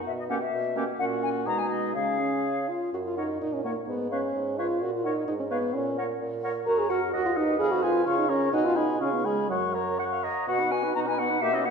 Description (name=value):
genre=quick classical-period movement for wind quintet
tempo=128 BPM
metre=2/4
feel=straight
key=F# major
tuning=A4 = 438 Hz
part: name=concert flute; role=melody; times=0.1-11.7 s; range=D#5 to C#6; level=-31 LUFS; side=left 6 dB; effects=none
part: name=mellow bassoon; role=bass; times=0.1-11.7 s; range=D#2 to C#3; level=-33 LUFS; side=right 2 dB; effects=none
part: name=mellow oboe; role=second line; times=0.3-11.7 s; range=E4 to Ab5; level=-34 LUFS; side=left 2 dB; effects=none
part: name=clear French horn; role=accompaniment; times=0.3-11.7 s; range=F#3 to A#4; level=-28 LUFS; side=right 1 dB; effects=none
part: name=warm clarinet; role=accompaniment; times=0.3-11.7 s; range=C#4 to F#5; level=-34 LUFS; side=right 6 dB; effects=none
room=wet recital hall reverb, RT60 1.5 s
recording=recorded in a church or concert hall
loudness=-24 LUFS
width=side -5 dB against mid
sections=0.0-2.9 A section; 2.9-10.5 B section; 10.5-11.7 A section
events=none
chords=0.1 D#7(no3)/B (rootless); 1.0 F#/A#; 1.5 G#m/B; 2.0 C#; 2.9 F#; 3.4 F#/A# (rootless); 3.9 C#7/G#; 4.8 F#/A#; 5.3 C#7(no3)/G# (rootless); 5.7 F#/A# (rootless); 6.7 F#; 7.1 B/D#; 7.6 Fdim; 8.1 A#m/C#; 8.5 G#m7/B; 9.0 C#7; 9.5 F#; 10.5 B